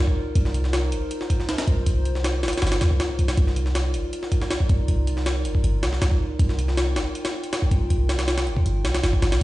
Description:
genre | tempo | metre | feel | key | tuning
drum and bass, jungle | 159 BPM | 4/4 | straight | C minor | A4 = 438 Hz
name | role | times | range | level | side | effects
warbly tape-like pad | sustained chords | 0.0-9.4 s | Eb4 to G5 | -30 LUFS | equal | chorus, built-in reverb
warm 808-style bass | bass | 0.0-9.4 s | G1 to Eb2 | -22 LUFS | equal | tube saturation
jungle sampler-style drum kit | drums | 0.1-9.4 s | hi-hat, kick drum, snare drum | -24 LUFS | equal | overdrive, small room ambience
room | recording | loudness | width
little or no reverb | played on a big sound system in a bare room, stone room reverb, nothing above 10.5 kHz | -20 LUFS | side -17 dB against mid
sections
0.0-9.4 A section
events
none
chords
0.0 Cm11

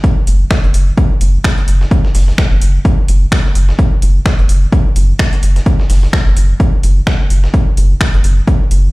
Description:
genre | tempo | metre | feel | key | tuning
minimal techno | 128 BPM | 4/4 | swing 57% on 16ths | unclear | A4 = 438 Hz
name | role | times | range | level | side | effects
dusty soul sampler-style drum kit | drums | 0.0-8.8 s | hi-hat, snare drum | -29 LUFS | equal | overdrive, sidechain pumping on hats, high-pass filter on hats, high-pass filter on snare
electronic kick drum | drums | 0.0-8.6 s | none | -13 LUFS | equal | overdrive
round analog bass | bass | 0.3-8.9 s | F#1 | -10 LUFS | equal | sidechain pumping
house drum kit | drums | 0.3-8.8 s | finger snaps, hi-hat | -22 LUFS | equal | overdrive
room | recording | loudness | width
little or no reverb | played on a big sound system in a bare room, large studio reverb | -9 LUFS | side -22 dB against mid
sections
0.0-8.9 A section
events
none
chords
none

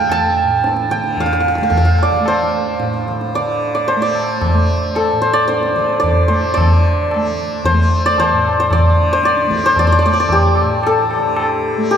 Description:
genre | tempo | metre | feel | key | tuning
indian classical, Hindustani | 112 BPM | 4/4 | straight | A raga malkauns | A4 = 440 Hz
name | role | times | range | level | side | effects
santur | melody | 0.0-12.0 s | G4 to A5 | -15 LUFS | equal | none
tanpura | drone | 0.0-12.0 s | A2 to A3 | -23 LUFS | right 1 dB | none
tabla | percussion | 0.1-12.0 s | none | -18 LUFS | left 1 dB | none
room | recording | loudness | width
wet cathedral reverb, RT60 5.2 s | in a vast, echoing space | -13 LUFS | side -8 dB against mid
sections
0.0-6.6 A section; 6.6-12.0 B section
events
none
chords
none

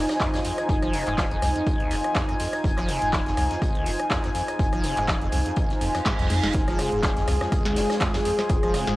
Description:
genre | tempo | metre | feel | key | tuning
acid house | 123 BPM | 4/4 | swing 55% on 16ths | F minor | A4 = 440 Hz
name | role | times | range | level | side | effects
warm analog pad | sustained chords | 0.0-9.0 s | Ab3 to Ab5 | -26 LUFS | equal | chorus, sidechain pumping
warm sub bass | bass | 0.0-9.0 s | F1 to F2 | -29 LUFS | equal | sidechain pumping
granular cloud pad | texture | 0.0-9.0 s | F4 to Ab5 | -33 LUFS | right 1 dB | built-in reverb, sidechain pumping
booming analog drum machine | drums | 0.1-9.0 s | handclaps, hi-hat, rim click, snare drum | -30 LUFS | equal | cassette tape
soft-mallet drum kit | drums | 0.1-8.9 s | hi-hat, snare drum | -38 LUFS | left 1 dB | high-pass filter on hats, cassette tape, high-pass filter on snare, high-pass filter on room
liquid acid bass | riff | 0.2-9.0 s | F1 to Ab3 | -31 LUFS | equal | overdrive, lush chorus, tape echo
electronic kick drum | drums | 0.2-8.6 s | none | -26 LUFS | equal | cassette tape
reverse cymbal | sound effects | 5.8-6.5 s | none | -34 LUFS | right 6 dB | none
room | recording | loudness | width
light reverb, digital ambience | home recording on cassette | -21 LUFS | side -18 dB against mid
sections
0.0-6.5 A section; 6.5-9.0 B section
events
reverse cymbal 5.8-6.5; drum fill 6.1-6.5; band accent 6.4; drop 6.5-9.0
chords
0.0 Fm

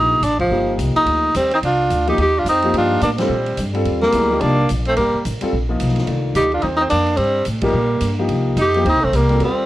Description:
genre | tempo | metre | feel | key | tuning
modal jazz | 216 BPM | 4/4 | swing 60% on 8ths | C dorian | A4 = 444 Hz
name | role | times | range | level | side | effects
clear tenor saxophone | melody | 0.0-9.7 s | F3 to G4 | -17 LUFS | equal | plate reverb
clear concert grand piano | accompaniment | 0.0-9.7 s | Eb3 to A4 | -22 LUFS | left 2 dB | none
upright bass | bass | 0.0-9.7 s | G1 to Bb2 | -21 LUFS | equal | none
swinging big-band drum kit | drums | 0.2-9.5 s | hi-hat, kick drum, ride cymbal, snare drum | -31 LUFS | right 1 dB | none
warm tenor saxophone | second line | 1.4-9.7 s | G3 to Eb4 | -24 LUFS | right 3 dB | none
room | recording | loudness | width
light reverb | worn, warbling old tape, cassette tape, warbly pitch drift | -15 LUFS | side -15 dB against mid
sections
0.0-9.7 A section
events
band accent 0.4, 3.2, 7.6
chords
0.0 Cm11

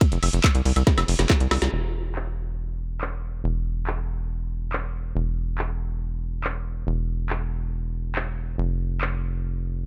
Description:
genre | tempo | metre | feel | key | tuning
psychedelic trance | 140 BPM | 4/4 | straight | unclear | A4 = 439 Hz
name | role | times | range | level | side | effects
drum and bass drum kit | drums | 0.0-9.1 s | handclaps, hi-hat, ride cymbal, snare drum, woodblock | -29 LUFS | equal | low-pass filter on hats, low-pass filter on snare, low-pass filter on perc, low-pass filter on cymbals, low-pass filter on room
electronic kick drum | drums | 0.0-1.4 s | none | -21 LUFS | equal | overdrive
tight sequencer bass | bass | 0.1-9.9 s | E1 to C2 | -28 LUFS | equal | none
room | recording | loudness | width
little or no reverb | none | -26 LUFS | mono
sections
0.0-1.7 A section; 1.7-9.9 B section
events
drop 0.0-1.7; drum fill 0.9-1.7; band accent 1.6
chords
none

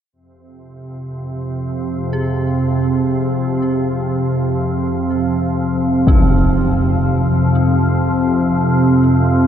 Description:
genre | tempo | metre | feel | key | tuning
dark ambient drone | free time | none | none | F minor | A4 = 439 Hz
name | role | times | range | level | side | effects
organ-like drone | drone | 0.8-9.5 s | F2 to C3 | -15 LUFS | equal | ensemble chorus, built-in reverb
dark detuned synth bell | arpeggios | 2.1-9.5 s | Eb4 to Ab4 | -33 LUFS | right 1 dB | chorus, ping-pong delay, shimmer reverb
impact | percussion | 6.1-6.3 s | none | -18 LUFS | left 1 dB | low-pass filter on sfx
room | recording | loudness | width
wet huge ambient reverb, RT60 7.2 s | none | -14 LUFS | side -9 dB against mid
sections
0.1-9.5 A section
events
fade-in on synth bell 0.1-9.5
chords
0.1 F5

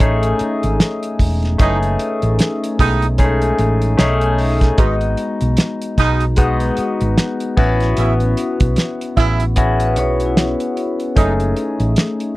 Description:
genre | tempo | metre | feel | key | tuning
lush 1970s-style soul | 75 BPM | 4/4 | swing 58% on 16ths | F# dorian | A4 = 441 Hz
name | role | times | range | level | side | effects
barky tine electric piano | accompaniment | 0.0-12.4 s | G#3 to G#4 | -19 LUFS | left 2 dB | phaser
hollow-body short-scale fingered electric bass | bass | 0.0-11.9 s | E1 to B1 | -18 LUFS | equal | none
cloth-damped thuddy drum kit | drums | 0.0-12.4 s | crash cymbal, hi-hat, kick drum, snare drum | -17 LUFS | equal | none
vibraphone with hard mallets | texture | 0.0-3.6, 9.6-11.8 s | E4 to F#5 | -28 LUFS | right 1 dB | none
warm horn section | stabs | 1.6-11.3 s | A2 to E4 | -18 LUFS | right 4 dB | none
room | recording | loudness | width
little or no reverb | dry, close 1970s-style studio recording | -14 LUFS | side -19 dB against mid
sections
0.0-12.4 A section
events
none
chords
0.0 F#m69; 4.0 B13; 4.8 G#m7; 7.6 A69; 11.2 F#m69

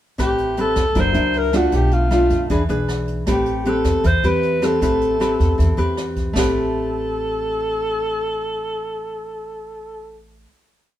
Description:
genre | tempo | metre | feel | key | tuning
bossa nova | 156 BPM | 4/4 | straight | A minor | A4 = 440 Hz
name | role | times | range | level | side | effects
breathy alto saxophone | melody | 0.2-10.2 s | F4 to C5 | -21 LUFS | equal | none
nylon-string guitar | accompaniment | 0.2-10.5 s | B2 to B4 | -21 LUFS | left 1 dB | none
upright bass | bass | 0.2-10.4 s | F#1 to F2 | -22 LUFS | equal | none
jazz brush drum kit | drums | 0.2-6.4 s | hi-hat, kick drum, rim click, snare drum | -26 LUFS | equal | none
room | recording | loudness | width
light reverb | band playing live in one room | -17 LUFS | side -12 dB against mid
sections
0.2-6.4 A section; 6.4-9.4 final chord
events
none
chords
0.2 Am9; 1.0 F#7b13; 1.7 Bm7b5; 2.5 E7; 3.3 Am9

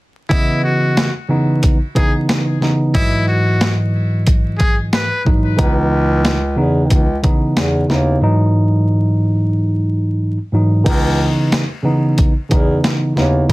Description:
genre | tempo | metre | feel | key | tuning
hip hop, boom-bap hip-hop | 91 BPM | 4/4 | swing 58% on 16ths | C# minor | A4 = 440 Hz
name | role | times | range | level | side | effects
trumpet with metal mute | melody | 0.3-5.2 s | E4 to B4 | -22 LUFS | left 1 dB | ping-pong delay
tine electric piano | accompaniment | 0.3-13.5 s | G#2 to D#5 | -15 LUFS | equal | cassette tape
boom bap sampler-style drum kit | drums | 0.3-13.5 s | crash cymbal, hi-hat, kick drum, snare drum | -16 LUFS | equal | overdrive
warm bass clarinet | bass | 5.6-13.5 s | C#2 to E2 | -18 LUFS | equal | none
room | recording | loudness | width
light reverb | dense, heavily limited modern master, vinyl crackle | -13 LUFS | side -20 dB against mid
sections
0.3-10.9 A section; 10.9-13.5 B section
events
none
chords
0.3 C#m9; 3.0 Emaj9; 5.6 C#m9; 8.2 Emaj9; 10.9 C#m9

